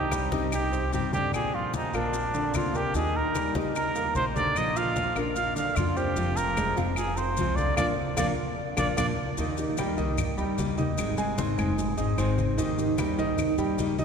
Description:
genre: latin, Cuban son and guajira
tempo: 150 BPM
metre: 4/4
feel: straight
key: Eb major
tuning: A4 = 441 Hz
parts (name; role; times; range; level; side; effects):
- breathy trumpet; melody; 0.0-9.1 s; D4 to F5; -29 LUFS; right 2 dB; none
- nylon-string guitar; accompaniment; 0.0-14.0 s; C3 to Ab4; -33 LUFS; left 2 dB; none
- clear grand piano; arpeggios; 0.0-14.0 s; D3 to Eb6; -30 LUFS; right 2 dB; none
- upright bass; bass; 0.0-14.0 s; F1 to G2; -32 LUFS; equal; none
- claves; percussion; 0.1-13.6 s; none; -41 LUFS; left 5 dB; none
- congas; percussion; 0.1-14.0 s; none; -34 LUFS; left 2 dB; none
- maracas; percussion; 0.1-14.0 s; none; -42 LUFS; left 6 dB; none
room: wet cathedral reverb, RT60 4.8 s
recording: recorded in a church or concert hall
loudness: -24 LUFS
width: side -6 dB against mid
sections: 0.0-9.4 A section; 9.4-14.0 B section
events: band accent 7.8-9.4; drum fill 8.8-9.4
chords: 0.0 Cm; 1.3 Bbadd9; 3.0 Eb; 4.6 Bb; 6.2 Fm; 7.8 Bb; 9.4 Eb; 11.0 Ab; 12.6 Eb

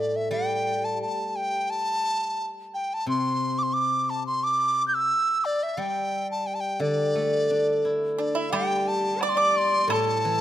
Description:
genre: chinese traditional, Chinese chamber ensemble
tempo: 88 BPM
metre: 2/4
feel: rubato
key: D shang mode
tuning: A4 = 442 Hz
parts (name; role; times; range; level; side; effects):
- mellow hollow dizi; melody; 0.0-10.4 s; D5 to G6; -25 LUFS; equal; none
- steel-string zither; accompaniment; 0.0-10.4 s; A2 to E4; -28 LUFS; equal; none
- dark horsehead fiddle; second line; 8.2-10.4 s; D4 to D5; -28 LUFS; left 3 dB; none
- pipa; second line; 8.2-10.4 s; D4 to D5; -30 LUFS; right 5 dB; none
- woodblock; percussion; 8.5-10.1 s; none; -35 LUFS; right 2 dB; none
room: moderate concert hall reverb, RT60 2.1 s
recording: close, detailed microphones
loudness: -23 LUFS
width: side -12 dB against mid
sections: 0.0-8.5 A section; 8.5-10.4 B section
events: none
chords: none

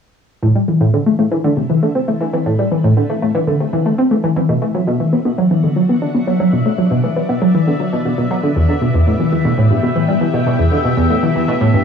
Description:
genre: ambient, sequencer-driven space music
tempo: 118 BPM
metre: 4/4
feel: straight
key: A dorian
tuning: A4 = 440 Hz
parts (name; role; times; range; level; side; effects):
- string machine, full ensemble; sustained chords; 0.4-11.8 s; B3 to G5; -24 LUFS; equal; ensemble chorus, plate reverb
- analog pluck; riff; 0.4-11.8 s; E2 to D4; -13 LUFS; equal; chorus, tape echo
- bubbling stepped-filter texture; texture; 0.8-11.8 s; E5; -26 LUFS; left 4 dB; chorus, built-in reverb
room: wet small room ambience, RT60 0.5 s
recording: home recording on cassette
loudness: -13 LUFS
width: side -7 dB against mid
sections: 0.4-11.8 A section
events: fade-in on string machine 0.4-11.8; fade-in on synth texture 0.4-11.8; filter sweep on synth arpeggio sound 0.4-11.8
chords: 0.4 Amadd9; 4.5 Bm; 8.6 Em

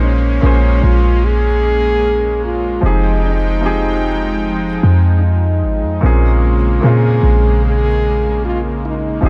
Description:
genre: R&B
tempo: 75 BPM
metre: 4/4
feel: straight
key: Bb minor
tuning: A4 = 444 Hz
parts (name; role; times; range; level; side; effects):
- mellow French horn; melody; 0.0-9.3 s; Db4 to Ab4; -22 LUFS; equal; tape echo
- warm baby grand piano; accompaniment; 0.0-9.3 s; Bb2 to Eb5; -24 LUFS; equal; none
- warm analog pad; sustained chords; 0.0-9.3 s; Db3 to G5; -24 LUFS; equal; chorus, tremolo
- warm 808-style bass; bass; 0.0-9.3 s; F1 to Bb2; -16 LUFS; equal; none
room: light reverb, small room ambience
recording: none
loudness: -14 LUFS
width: mono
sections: 0.0-9.3 A section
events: none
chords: 0.0 Bbm9; 2.8 Fm9; 6.0 Bbm9

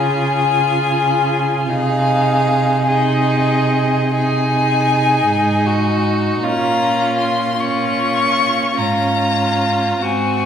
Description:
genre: classical, slow romantic movement for string quartet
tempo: 45-54 BPM (dotted quarters)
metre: 12/8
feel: rubato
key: Db major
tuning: A4 = 440 Hz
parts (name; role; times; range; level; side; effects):
- clear violin; melody; 0.0-10.5 s; Eb5 to Db6; -20 LUFS; left 5 dB; none
- clear violin; second line; 0.0-10.5 s; F4 to Ab4; -19 LUFS; left 1 dB; none
- clear viola; accompaniment; 0.0-10.5 s; C4 to F4; -22 LUFS; right 3 dB; none
- rich cello; bass; 0.0-10.5 s; Ab2 to Db3; -20 LUFS; right 2 dB; none
room: wet recital hall reverb, RT60 1.6 s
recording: recorded in a church or concert hall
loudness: -14 LUFS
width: side -8 dB against mid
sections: 0.0-10.5 A section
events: none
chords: 0.0 Db; 1.7 Ab/C; 6.4 Bbm; 8.8 Db/Ab

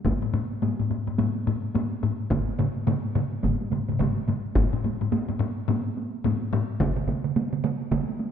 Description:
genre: japanese traditional, taiko drum ensemble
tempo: 107 BPM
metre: 4/4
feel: swing 60% on 16ths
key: none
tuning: none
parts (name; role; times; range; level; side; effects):
- taiko ensemble; percussion; 0.0-8.1 s; none; -28 LUFS; left 1 dB; none
- taiko ensemble; percussion; 0.1-8.3 s; none; -29 LUFS; right 3 dB; none
- taiko ensemble; percussion; 0.1-6.7 s; none; -27 LUFS; left 6 dB; none
- solo taiko drums; percussion; 2.3-8.1 s; none; -28 LUFS; right 7 dB; none
room: wet scoring stage reverb, RT60 1.9 s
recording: none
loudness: -24 LUFS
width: side -8 dB against mid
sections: 0.0-4.6 A section; 4.6-8.3 B section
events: none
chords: none

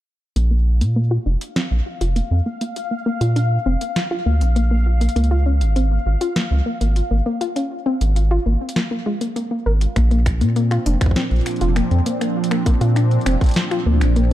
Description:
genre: IDM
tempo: 100 BPM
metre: 4/4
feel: straight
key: Bb major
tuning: A4 = 440 Hz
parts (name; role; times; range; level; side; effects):
- soft round pluck; arpeggios; 0.4-14.2 s; Ab3 to Bb4; -24 LUFS; left 2 dB; chorus, tape echo
- round analog bass; bass; 0.4-14.3 s; F1 to Bb2; -16 LUFS; equal; tube saturation
- booming analog drum machine; drums; 0.4-14.3 s; finger snaps, hi-hat, snare drum; -26 LUFS; equal; overdrive, digital delay
- bubbling stepped-filter texture; texture; 0.4-10.0 s; F5; -31 LUFS; left 3 dB; chorus, built-in reverb
- phased analog pad; sustained chords; 10.0-14.3 s; Bb2 to D4; -23 LUFS; right 2 dB; phaser, chorus
- electronic kick drum; drums; 10.0-13.5 s; none; -17 LUFS; equal; none
room: light reverb, digital ambience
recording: dark, warm production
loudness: -16 LUFS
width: side -14 dB against mid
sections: 0.4-10.0 A section; 10.0-14.3 B section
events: filter sweep on analog synth bass 0.4-10.0; filter sweep on synth arpeggio sound 0.4-10.0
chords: 0.4 Bb; 5.2 Db; 10.0 Bb

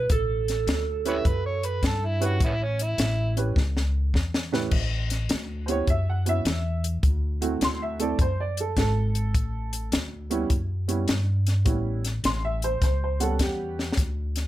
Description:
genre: electric blues shuffle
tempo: 104 BPM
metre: 4/4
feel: swing 66% on 8ths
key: A mixolydian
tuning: A4 = 440 Hz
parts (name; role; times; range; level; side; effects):
- electric guitar through a small old amp; melody; 0.0-4.1 s; A4 to B4; -29 LUFS; right 7 dB; none
- upright bass; bass; 0.0-14.5 s; G#1 to G2; -26 LUFS; equal; none
- compact cocktail drum kit; drums; 0.1-14.4 s; crash cymbal, hi-hat, kick drum, snare drum; -26 LUFS; left 1 dB; none
- overdriven harmonica; second line; 1.1-3.4 s; B3 to E5; -29 LUFS; right 2 dB; none
- dark upright piano; accompaniment; 1.1-14.0 s; A2 to C6; -28 LUFS; right 3 dB; none
room: little or no reverb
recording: none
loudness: -23 LUFS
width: side -14 dB against mid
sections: 0.0-4.7 A section; 4.7-14.5 B section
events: drum fill 3.6-4.7, 13.7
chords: 0.1 A9; 4.7 Aadd9; 7.0 D9; 9.3 A9

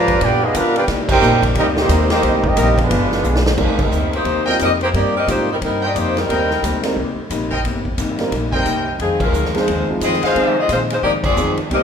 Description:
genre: jazz, big band swing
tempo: 177 BPM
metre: 4/4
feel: swing 62% on 8ths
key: C minor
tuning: A4 = 439 Hz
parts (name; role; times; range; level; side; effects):
- warm trumpet section; melody; 0.0-3.4 s; Ab3 to A#5; -17 LUFS; right 2 dB; none
- clear trombone section; second line; 0.0-3.4 s; A#2 to G4; -23 LUFS; right 2 dB; none
- archtop guitar, miked and amplified; accompaniment; 0.0-11.8 s; F2 to A#4; -25 LUFS; left 4 dB; none
- bright saxophone section; sustained chords; 0.0-3.6 s; F3 to B4; -27 LUFS; left 1 dB; none
- upright bass; bass; 0.0-11.8 s; G1 to D3; -22 LUFS; equal; none
- swinging big-band drum kit; drums; 0.1-11.8 s; crash cymbal, hi-hat, kick drum, ride cymbal, snare drum; -22 LUFS; equal; none
- warm saxophone section; melody; 3.6-6.9, 9.0-11.8 s; F3 to Eb5; -18 LUFS; left 2 dB; none
- warm grand piano; accompaniment; 3.6-11.8 s; Eb3 to Bb4; -23 LUFS; right 2 dB; none
- bright trumpet section; stabs; 4.5-10.7 s; Ab4 to G5; -23 LUFS; equal; none
room: moderate recital hall reverb, RT60 1.4 s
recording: minimal, uncompressed stereo recording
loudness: -15 LUFS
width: side -7 dB against mid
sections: 0.0-3.6 A section; 3.6-11.8 B section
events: band accent 1.1, 3.8, 9.2, 11.2; drum fill 3.2-3.6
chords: 0.0 G7#9; 0.9 Cm7; 2.9 G7b9; 3.6 Cm7; 9.0 Fm7

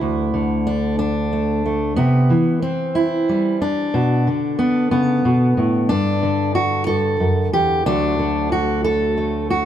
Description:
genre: folk, solo fingerstyle acoustic guitar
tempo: 61 BPM (dotted quarters)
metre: 6/8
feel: straight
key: D major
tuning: A4 = 440 Hz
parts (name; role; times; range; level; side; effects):
- fingerpicked steel-string acoustic guitar; solo; 0.0-9.7 s; D2 to A4; -16 LUFS; equal; tape echo
room: wet studio reverb, RT60 0.7 s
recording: heard from further back in the room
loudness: -16 LUFS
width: side -10 dB against mid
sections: 0.0-9.7 A section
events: none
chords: 0.0 Dsus2; 2.0 Cmaj7; 3.9 Bm7; 5.9 G5; 7.9 D

